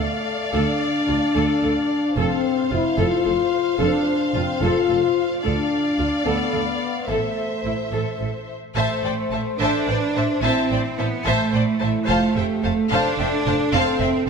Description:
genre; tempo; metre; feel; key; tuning
cinematic; 73 BPM (dotted quarters); 6/8; straight; A minor; A4 = 440 Hz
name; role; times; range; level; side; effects
rich studio violin section; melody; 0.0-14.3 s; E5 to A5; -30 LUFS; left 4 dB; none
warm symphonic violin section; second line; 0.0-14.1 s; C5 to F5; -28 LUFS; left 2 dB; none
clear symphonic viola section; accompaniment; 0.0-14.1 s; E4 to C5; -28 LUFS; right 1 dB; none
mellow French horn section; sustained chords; 0.0-14.3 s; A3 to C5; -23 LUFS; left 4 dB; none
clear symphonic cello section; bass; 0.0-14.3 s; D2 to D4; -25 LUFS; right 4 dB; none
rich symphonic double bass section; bass; 0.0-14.3 s; F1 to D2; -27 LUFS; right 4 dB; none
room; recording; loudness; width
wet scoring stage reverb, RT60 1.7 s; none; -19 LUFS; side -6 dB against mid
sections
0.0-8.8 A section; 8.8-14.3 B section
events
none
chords
0.0 Dm; 2.2 F; 5.4 Dm; 7.1 Am; 12.1 F

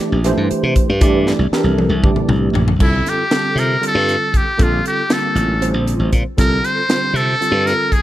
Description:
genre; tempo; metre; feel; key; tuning
electric jazz fusion; 235 BPM (eighths); 7/8; straight; C mixolydian; A4 = 438 Hz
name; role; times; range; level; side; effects
barky tine electric piano; accompaniment; 0.0-8.0 s; D3 to D5; -20 LUFS; right 2 dB; ensemble chorus
glassy slap bass; bass; 0.1-7.7 s; A1 to C3; -17 LUFS; equal; none
crisp fusion drum kit; drums; 0.2-8.0 s; crash cymbal, hi-hat, kick drum, snare drum, toms; -18 LUFS; equal; none
trumpet with metal mute; melody; 2.8-8.0 s; E4 to C5; -18 LUFS; equal; slapback echo
room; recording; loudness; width
light reverb, small room ambience; dark, warm production; -13 LUFS; side -14 dB against mid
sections
0.0-2.8 A section; 2.8-8.0 B section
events
drum fill 1.3-2.8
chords
0.0 C9; 2.8 Csus24; 4.6 Bbmaj9; 6.4 Csus24

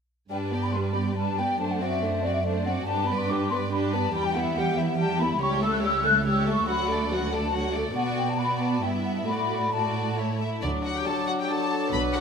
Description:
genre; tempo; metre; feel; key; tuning
quick classical-period movement for symphony orchestra; 141 BPM; 3/4; rubato; G major, D major from 5.4 s; A4 = 441 Hz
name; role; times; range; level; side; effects
warm chamber violin section; melody; 0.3-12.2 s; B4 to B5; -34 LUFS; left 3 dB; none
hollow large flute ensemble; second line; 0.3-12.2 s; D5 to F#6; -28 LUFS; left 2 dB; none
warm chamber violin section; second line; 0.3-12.2 s; D4 to B4; -33 LUFS; left 3 dB; none
warm chamber viola section; accompaniment; 0.3-11.8 s; F#3 to D4; -31 LUFS; right 2 dB; none
dark chamber cello section; bass; 0.3-12.2 s; C#2 to D3; -29 LUFS; right 3 dB; none
warm bassoon; accompaniment; 10.6-12.2 s; F#3; -32 LUFS; right 2 dB; none
mellow French horn section; sustained chords; 10.6-12.2 s; F#3 to D4; -30 LUFS; left 5 dB; none
warm chamber double bass section; bass; 10.6-12.2 s; B1 to D2; -33 LUFS; right 2 dB; none
room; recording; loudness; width
wet scoring stage reverb, RT60 1.9 s; none; -23 LUFS; side -6 dB against mid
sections
0.3-10.6 A section; 10.6-12.2 B section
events
none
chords
0.3 G; 1.6 D7/F#; 2.9 G; 4.1 Em; 5.4 A7/C#; 6.7 D; 8.0 Bm; 8.8 Em/G; 9.3 D/A; 10.6 D

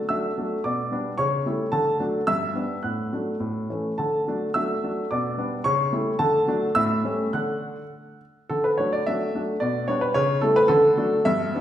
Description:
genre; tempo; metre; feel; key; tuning
classical-period piano sonatina; 102-112 BPM; 2/4; rubato; D major; A4 = 440 Hz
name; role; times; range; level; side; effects
warm baby grand piano; solo; 0.0-11.6 s; G2 to F#6; -21 LUFS; equal; none
room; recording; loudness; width
wet recital hall reverb, RT60 1.4 s; heard from further back in the room; -21 LUFS; side -11 dB against mid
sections
0.0-8.5 A section; 8.5-11.6 B section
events
none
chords
0.0 D; 0.6 G/B; 1.2 A7/C#; 1.7 D; 2.3 G; 2.8 D/A; 3.4 A; 4.0 D; 5.1 G/B; 5.7 A7/C#; 6.2 D; 6.8 A7; 7.3 D; 9.6 G/B; 10.2 A7/C#; 10.7 D

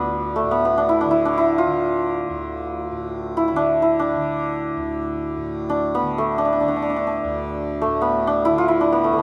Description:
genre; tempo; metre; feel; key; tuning
indian classical, Hindustani; free time; none; none; D raga shivaranjani; A4 = 440 Hz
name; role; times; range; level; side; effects
santur; melody; 0.0-9.2 s; A3 to F4; -22 LUFS; equal; none
tanpura; drone; 0.0-9.2 s; D2 to D3; -31 LUFS; equal; none
room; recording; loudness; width
light reverb; none; -21 LUFS; mono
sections
0.0-9.2 A section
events
none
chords
none

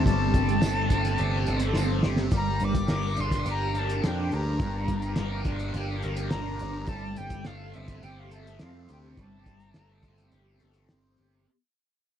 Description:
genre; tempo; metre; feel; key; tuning
psychedelic rock; 105 BPM; 4/4; straight; unclear; A4 = 440 Hz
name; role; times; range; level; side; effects
bright reedy concert flute; melody; 0.0-10.3 s; E5 to D6; -33 LUFS; left 2 dB; slapback echo
overdriven tonewheel organ; sustained chords; 0.0-11.5 s; A3 to Bb4; -39 LUFS; right 6 dB; slow rotary speaker, chorus vibrato
thick fuzz guitar; riff; 0.0-11.5 s; G3 to Bb4; -31 LUFS; equal; distortion, phaser
picked electric bass; bass; 0.0-11.5 s; G1 to F2; -30 LUFS; equal; none
cloth-damped thuddy drum kit; drums; 0.1-11.3 s; hi-hat, kick drum, snare drum; -28 LUFS; equal; none
tambourine; percussion; 0.6-1.9 s; none; -42 LUFS; right 8 dB; none
room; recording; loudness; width
little or no reverb; dry, close 1970s-style studio recording; -25 LUFS; side -9 dB against mid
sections
0.0-11.5 A section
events
fade-out 0.0-11.5; drum fill 1.8-2.3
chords
0.0 Am/G; 2.3 Gm; 6.9 Am/G

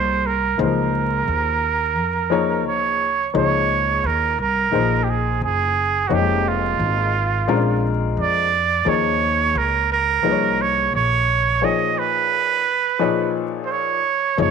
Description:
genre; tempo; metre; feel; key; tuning
hip hop; 87 BPM; 4/4; swing 59% on 16ths; Db major; A4 = 440 Hz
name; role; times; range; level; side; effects
trumpet with straight mute; melody; 0.0-14.5 s; F4 to Eb5; -19 LUFS; right 8 dB; none
warm upright piano; accompaniment; 0.0-14.5 s; Bb2 to Db5; -23 LUFS; left 9 dB; none
upright bass; bass; 0.0-14.5 s; F1 to F2; -24 LUFS; equal; none
room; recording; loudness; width
moderate echo chamber reverb, RT60 1.3 s, small room ambience; 1960s-style stereo with parts hard left and right, vinyl crackle; -17 LUFS; side -6 dB against mid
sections
0.0-3.3 A section; 3.3-14.5 B section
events
none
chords
0.0 Db69; 6.1 Fm11; 7.5 Bb7; 8.9 Eb9sus4; 11.6 Db9

